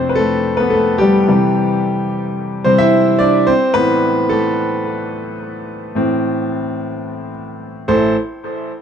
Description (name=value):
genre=pop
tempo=109 BPM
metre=4/4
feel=straight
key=A minor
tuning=A4 = 439 Hz
part: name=clear concert grand piano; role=solo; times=0.0-8.1 s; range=A1 to E5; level=-14 LUFS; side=equal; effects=dub echo
room=moderate spring reverb, RT60 1.8 s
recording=echo-heavy mix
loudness=-13 LUFS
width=side -8 dB against mid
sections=0.0-7.9 A section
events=grand piano solo 0.0-7.9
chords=0.0 F; 1.3 C; 3.5 Am